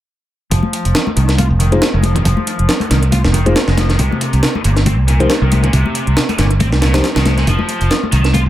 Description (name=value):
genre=breakbeat, breaks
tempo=138 BPM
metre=4/4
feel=swing 55% on 16ths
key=F minor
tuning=A4 = 441 Hz
part: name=high-gain distorted guitar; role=riff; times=0.5-8.4 s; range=Bb2 to F4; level=-21 LUFS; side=equal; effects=distortion, tube saturation, low-pass filter, dub echo
part: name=fingered electric bass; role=bass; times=0.5-8.5 s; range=F1 to C2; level=-13 LUFS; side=equal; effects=low-pass filter
part: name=breakbeat sampler-style drum kit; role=drums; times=0.5-8.5 s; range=hi-hat, kick drum, snare drum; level=-18 LUFS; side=right 1 dB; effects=high-pass filter on hats, high-pass filter on kick, high-pass filter on snare, high-pass filter on room, dub echo
part: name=electronic hi-hat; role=drums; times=0.5-8.4 s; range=none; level=-27 LUFS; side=right 1 dB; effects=none
part: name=congas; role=percussion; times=0.6-8.4 s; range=none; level=-22 LUFS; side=left 4 dB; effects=none
part: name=bell-like tine electric piano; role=stabs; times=1.7-7.1 s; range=Eb4 to C5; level=-22 LUFS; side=left 2 dB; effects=vintage 12-bit sampler grit, low-pass filter, dub echo
room=light reverb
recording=echo-heavy mix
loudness=-12 LUFS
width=side -13 dB against mid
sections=0.5-8.5 A section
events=filter sweep on distorted electric guitar 0.5-8.5; filter sweep on tine electric piano 0.5-8.5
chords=0.5 Fm7; 4.0 Cm7; 7.5 F5